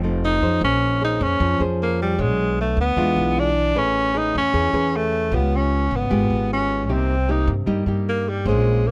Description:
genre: bossa nova.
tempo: 153 BPM.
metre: 4/4.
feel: straight.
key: unclear.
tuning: A4 = 440 Hz.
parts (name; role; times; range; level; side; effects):
breathy tenor saxophone; melody; 0.0-8.9 s; G3 to Eb4; -23 LUFS; equal; none.
nylon-string guitar; accompaniment; 0.0-8.9 s; C3 to C#5; -27 LUFS; equal; none.
upright bass; bass; 0.0-8.9 s; F1 to G2; -25 LUFS; equal; none.
room: little or no reverb.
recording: close, detailed microphones.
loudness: -20 LUFS.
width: mono.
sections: 0.6-8.9 A section.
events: none.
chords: 0.0 F7; 0.6 Bbm9; 2.2 Bmadd9; 3.0 E7b9; 3.8 Amaj9; 5.3 Db7#11; 6.9 Cm7.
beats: 0.23 | 0.62 1.01 1.40 1.79 | 2.19 2.58 2.97 3.36 | 3.76 4.15 4.54 4.93 | 5.32 5.72 6.11 6.50 | 6.89 7.28 7.67 8.07 | 8.46 8.85.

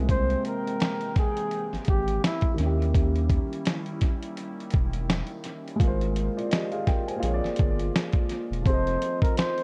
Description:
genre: lo-fi hip hop.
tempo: 84 BPM.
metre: 4/4.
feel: swing 58% on 16ths.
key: Eb major.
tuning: A4 = 441 Hz.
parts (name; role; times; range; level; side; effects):
dark upright piano; accompaniment; 0.0-9.6 s; C3 to Ab5; -34 LUFS; equal; cassette tape, tape echo.
warbly tape-like pad; sustained chords; 0.0-9.6 s; D3 to G5; -40 LUFS; equal; chorus, built-in reverb, phaser.
saturated sub bass; bass; 0.0-9.0 s; Fb1 to Eb2; -30 LUFS; equal; none.
mellow flugelhorn; melody; 0.1-2.6, 8.7-9.6 s; E4 to C5; -32 LUFS; equal; tape echo.
dusty soul sampler-style drum kit; drums; 0.1-9.6 s; hi-hat, kick drum, snare drum; -28 LUFS; equal; none.
room: light reverb.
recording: echo-heavy mix, cassette tape.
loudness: -26 LUFS.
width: mono.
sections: 0.0-8.7 A section.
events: none.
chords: 0.0 C7b13; 2.6 Eb7b9; 5.8 Ab69; 7.2 Bb7; 8.7 F7.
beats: | 0.08 0.80 1.51 2.23 | 2.94 3.65 4.37 5.08 | 5.80 6.51 7.23 7.94 | 8.65 9.37.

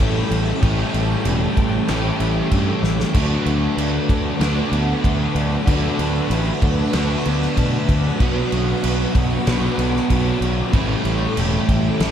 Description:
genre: rock, shoegaze and dream pop.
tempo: 95 BPM.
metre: 4/4.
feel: straight.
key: A mixolydian.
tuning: A4 = 438 Hz.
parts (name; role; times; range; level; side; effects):
string machine, full ensemble; sustained chords; 0.0-12.1 s; A4 to E6; -29 LUFS; right 1 dB; phaser, ensemble chorus.
crunchy overdriven guitar; riff; 0.0-12.1 s; A2 to E4; -24 LUFS; left 7 dB; wide subtle chorus.
overdriven electric guitar; riff; 0.0-12.1 s; A2 to D4; -26 LUFS; left 1 dB; lush chorus.
overdriven semi-hollow guitar; riff; 0.0-12.1 s; A2 to G4; -26 LUFS; right 9 dB; reverse reverb.
growling fingered electric bass; bass; 0.0-12.1 s; E1 to B2; -22 LUFS; equal; overdrive.
loose indie drum kit; drums; 0.0-12.1 s; crash cymbal, kick drum, snare drum; -23 LUFS; equal; none.
twelve-string electric guitar; arpeggios; 3.2-12.1 s; E3 to A4; -30 LUFS; right 3 dB; none.
room: light reverb, small room ambience.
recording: none.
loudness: -17 LUFS.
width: side -9 dB against mid.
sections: 0.0-12.1 A section.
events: drum fill 2.8-3.1.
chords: 0.0 A7sus4; 3.1 D6; 8.2 Bm; 10.7 A7sus4.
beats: 0.00 | 0.63 1.26 1.89 2.52 | 3.15 3.78 4.41 5.04 | 5.67 6.31 6.94 7.57 | 8.20 8.84 9.47 10.10 | 10.73 11.37 12.00.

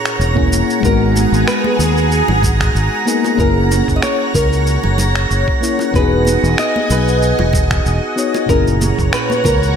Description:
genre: sunset chillout.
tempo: 94 BPM.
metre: 4/4.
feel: swing 55% on 16ths.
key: unclear.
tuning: A4 = 442 Hz.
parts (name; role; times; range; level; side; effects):
nylon-string guitar; melody; 0.0-9.8 s; G#4 to D#5; -20 LUFS; equal; ping-pong delay, slapback echo.
mellow FM electric piano; accompaniment; 0.0-9.8 s; A#2 to C#5; -19 LUFS; moving between left 7 dB and right 4 dB; chorus, auto-pan, ping-pong delay.
lush unison pad; sustained chords; 0.0-9.8 s; G#4 to A#5; -21 LUFS; right 1 dB; chorus, phaser.
drifting glass-harmonics texture; texture; 0.0-9.8 s; A#6; -25 LUFS; right 4 dB; chorus, built-in reverb.
electronic finger snaps and shaker; drums; 0.1-9.7 s; none; -24 LUFS; right 1 dB; studio reverb.
fingered electric bass; bass; 0.2-9.8 s; E1 to D#2; -16 LUFS; equal; none.
electronic kick drum; drums; 0.4-9.6 s; none; -18 LUFS; equal; studio reverb.
congas and bongos; percussion; 1.2-9.6 s; none; -26 LUFS; right 2 dB; none.
room: moderate lush hall reverb, RT60 2.2 s.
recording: big arena sound.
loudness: -12 LUFS.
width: side -7 dB against mid.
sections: 0.0-9.8 A section.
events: none.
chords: 0.0 F#7; 0.8 G#m9; 3.4 F#7; 5.9 Emaj9; 8.5 F#7.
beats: 0.19 | 0.83 1.47 2.11 2.75 | 3.39 4.02 4.66 5.30 | 5.94 6.58 7.21 7.85 | 8.49 9.13.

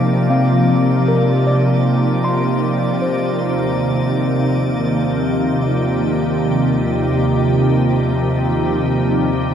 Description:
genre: ambient.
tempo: 77 BPM.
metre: 3/4.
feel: straight.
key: unclear.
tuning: A4 = 439 Hz.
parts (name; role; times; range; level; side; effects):
soft additive organ-like pad; sustained chords; 0.0-9.5 s; Eb2 to G4; -15 LUFS; equal; ensemble chorus, built-in reverb, shimmer reverb.
tine electric piano; arpeggios; 0.0-9.5 s; Bb3 to C6; -24 LUFS; left 2 dB; auto-pan, diffuse ambient delay, shimmer reverb.
drifting glass-harmonics texture; texture; 0.0-9.5 s; D5 to D6; -29 LUFS; right 4 dB; chorus, built-in reverb, shimmer reverb.
room: wet concert hall reverb, RT60 2.2 s.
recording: dark, warm production.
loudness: -14 LUFS.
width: side -8 dB against mid.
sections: 0.0-9.5 A section.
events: fade-out on tine electric piano 0.0-9.5; fade-out on synth texture 0.0-9.5.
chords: 0.0 Eb69; 3.4 Cmadd9/Eb.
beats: 0.30 | 1.08 1.86 2.64 | 3.42 4.20 4.98 | 5.76 6.54 7.32 | 8.10 8.88.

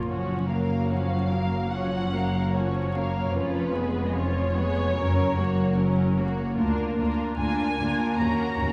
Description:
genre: classical, slow romantic movement for string orchestra.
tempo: 74 BPM.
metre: 4/4.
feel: rubato.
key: unclear.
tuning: A4 = 440 Hz.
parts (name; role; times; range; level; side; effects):
muted studio violin section; second line; 0.0-8.7 s; F4 to F5; -36 LUFS; equal; none.
muted studio viola section; accompaniment; 0.0-8.7 s; F3 to D4; -31 LUFS; equal; none.
muted studio double bass section; bass; 0.0-8.7 s; F1 to Eb2; -32 LUFS; equal; none.
muted symphonic cello section; bass; 0.0-8.7 s; D2 to Gb2; -31 LUFS; equal; none.
muted studio violin section; melody; 0.9-8.7 s; Cb5 to Bb5; -34 LUFS; equal; none.
room: wet scoring stage reverb, RT60 1.9 s.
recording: heard from further back in the room, vinyl crackle, nothing above 10.6 kHz.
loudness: -25 LUFS.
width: mono.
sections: 0.0-8.7 A section.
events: none.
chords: 0.1 Gbmaj7; 3.3 Db7/F; 5.0 Gb; 6.6 Bb7/D; 8.2 Ebm7.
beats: | 0.09 0.90 1.72 2.54 | 3.34 4.14 4.96 5.79 | 6.58 7.39 8.20.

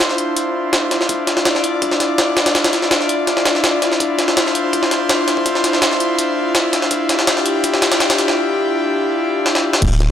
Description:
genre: drum and bass, jungle.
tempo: 165 BPM.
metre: 4/4.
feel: straight.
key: D minor.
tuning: A4 = 440 Hz.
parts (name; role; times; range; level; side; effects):
airy breathy pad; sustained chords; 0.0-10.1 s; D4 to D5; -17 LUFS; left 1 dB; chorus.
jungle sampler-style drum kit; drums; 0.0-10.1 s; crash cymbal, hi-hat, kick drum, snare drum; -16 LUFS; equal; high-pass filter on kick, high-pass filter on hats, high-pass filter on snare, high-pass filter on cymbals.
soft dub sub bass; bass; 9.8-10.1 s; D1; -14 LUFS; equal; none.
room: moderate lush hall reverb, RT60 2.1 s.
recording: dry, gritty hardware recording.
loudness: -14 LUFS.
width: side -9 dB against mid.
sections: 0.0-9.8 A section.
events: build-up 0.0-9.8; drum fill 9.5-9.8.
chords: 0.0 Dm9.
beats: 0.00 0.37 0.73 | 1.09 1.46 1.82 2.19 | 2.55 2.91 3.28 3.64 | 4.00 4.37 4.73 5.09 | 5.46 5.82 6.19 6.55 | 6.91 7.28 7.64 8.00 | 8.37 8.73 9.10 9.46 | 9.82.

